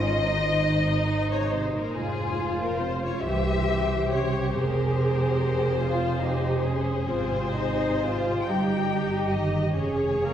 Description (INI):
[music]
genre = classical, slow romantic movement for string orchestra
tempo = 41-48 BPM (dotted quarters)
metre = 6/8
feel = rubato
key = unclear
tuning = A4 = 437 Hz
[part]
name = muted chamber violin section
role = melody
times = 0.0-10.3 s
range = Ab4 to G5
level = -29 LUFS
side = left 4 dB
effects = none
[part]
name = muted chamber violin section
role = second line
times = 0.0-10.3 s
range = Bb3 to C5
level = -32 LUFS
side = equal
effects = none
[part]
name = muted chamber viola section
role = accompaniment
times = 0.0-10.3 s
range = Eb4 to Bb4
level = -30 LUFS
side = right 1 dB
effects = none
[part]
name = muted chamber cello section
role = bass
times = 0.0-10.3 s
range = Ab2 to G3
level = -30 LUFS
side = right 1 dB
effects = none
[part]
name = muted chamber double bass section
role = bass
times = 0.0-10.3 s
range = F1 to C2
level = -30 LUFS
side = right 2 dB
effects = none
[sound]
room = wet recital hall reverb, RT60 1.6 s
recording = heard from further back in the room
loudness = -23 LUFS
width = side -10 dB against mid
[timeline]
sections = 0.0-10.3 A section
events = none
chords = 0.0 Ab; 1.9 Fm; 3.2 C; 4.5 Fm; 7.1 Fm/Ab; 8.5 Eb/G; 9.8 Db/F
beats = 0.65 | 1.95 3.23 | 4.55 5.80 | 7.07 8.48 | 9.75